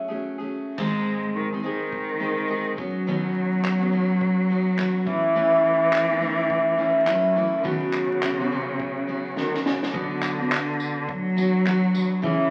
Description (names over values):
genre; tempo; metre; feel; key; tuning
acoustic pop; 105 BPM; 4/4; swing 60% on 16ths; unclear; A4 = 440 Hz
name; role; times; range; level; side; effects
picked steel-string acoustic guitar; accompaniment; 0.0-12.5 s; G#2 to B4; -27 LUFS; equal; none
clear cello; second line; 0.8-12.5 s; C#3 to G#3; -27 LUFS; equal; none
compact cocktail drum kit; drums; 0.8-12.4 s; crash cymbal, handclaps, kick drum, snare drum, tambourine; -33 LUFS; equal; none
room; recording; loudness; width
wet large studio reverb, RT60 1.0 s; very old 78 rpm record, vinyl crackle; -24 LUFS; mono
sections
0.8-9.9 A section; 9.9-12.5 B section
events
drum fill 9.4-9.9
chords
0.0 F#madd9; 0.8 G#; 2.8 Badd9; 5.1 Aadd9; 7.7 Badd9; 9.9 Bm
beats
0.20 | 0.78 1.35 1.92 2.50 | 3.07 3.64 4.21 4.79 | 5.36 5.93 6.51 7.08 | 7.65 8.22 8.80 9.37 | 9.94 10.52 11.09 11.66 | 12.23